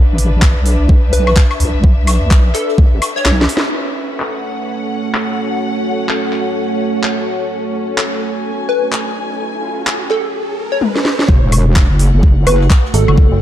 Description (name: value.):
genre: bass house.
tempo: 127 BPM.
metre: 4/4.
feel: swing 60% on 16ths.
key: F# minor.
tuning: A4 = 441 Hz.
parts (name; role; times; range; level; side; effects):
wobble bass; bass; 0.0-3.5, 11.3-13.3 s; E1 to D2; -13 LUFS; equal; chorus, sidechain pumping.
warm studio string section; texture; 0.0-13.4 s; C#4 to G#5; -23 LUFS; left 2 dB; sidechain pumping.
garage drum kit; drums; 0.2-13.2 s; handclaps, hi-hat, snare drum, toms, woodblock; -19 LUFS; left 1 dB; low-pass filter on hats, low-pass filter on snare, low-pass filter on perc, low-pass filter on toms, low-pass filter on room.
soft-mallet drum kit; drums; 0.2-3.7, 11.3-13.3 s; ride cymbal, snare drum; -33 LUFS; left 1 dB; none.
electronic kick drum; drums; 0.4-2.9, 11.3-13.3 s; none; -9 LUFS; equal; overdrive.
plucky unison lead; melody; 1.1-3.3, 8.7-13.4 s; A4 to C#5; -19 LUFS; left 1 dB; phaser, analog chorus, tape echo.
deep dark ambient pad; sustained chords; 4.5-13.4 s; A3 to C#5; -22 LUFS; right 3 dB; chorus, built-in reverb, sidechain pumping.
riser and sub drop; sound effects; 9.1-13.2 s; none; -24 LUFS; right 1 dB; none.
metallic FM bass; bass; 12.9-13.4 s; F#1 to G#1; -13 LUFS; equal; tube saturation, sidechain pumping.
room: light reverb.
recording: dark, warm production.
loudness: -12 LUFS.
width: side -12 dB against mid.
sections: 0.0-3.7 A section; 3.7-11.3 B section; 11.3-13.4 C section.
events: kick drops out 3.3-3.7; drum fill 3.3-3.7, 10.8-11.3; band accent 3.6; riser 9.1-11.3; drop 11.3-13.4; impact 11.3-13.2.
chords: 0.0 Bm; 3.7 F#m.